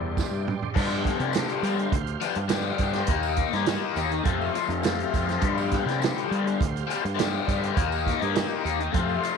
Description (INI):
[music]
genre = psychedelic rock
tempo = 103 BPM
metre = 4/4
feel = straight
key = unclear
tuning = A4 = 442 Hz
[part]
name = overdriven tonewheel organ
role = sustained chords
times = 0.0-9.4 s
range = G4 to C6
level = -35 LUFS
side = right 9 dB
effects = slow rotary speaker, chorus vibrato
[part]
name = raw garage guitar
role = riff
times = 0.0-9.4 s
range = F2 to G4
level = -27 LUFS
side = left 12 dB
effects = overdrive, phaser
[part]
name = fuzz picked electric bass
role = bass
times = 0.0-9.2 s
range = D2 to G3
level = -30 LUFS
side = right 2 dB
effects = overdrive
[part]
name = vintage drum kit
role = drums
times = 0.2-9.4 s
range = crash cymbal, hi-hat, kick drum, snare drum, toms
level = -28 LUFS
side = right 4 dB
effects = none
[part]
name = tambourine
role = percussion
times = 0.2-9.4 s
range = none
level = -46 LUFS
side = right 17 dB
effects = none
[sound]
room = light reverb, small room ambience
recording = 1960s-style stereo with parts hard left and right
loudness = -23 LUFS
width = side -6 dB against mid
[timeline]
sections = 0.8-9.4 A section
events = drum fill 0.2-0.8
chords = 0.0 Csus2; 0.8 G7sus4; 3.1 Eb; 4.3 F; 5.4 G7sus4; 7.8 Eb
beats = 0.17 | 0.75 1.34 1.92 2.51 | 3.09 3.67 4.26 4.84 | 5.43 6.01 6.60 7.18 | 7.77 8.35 8.94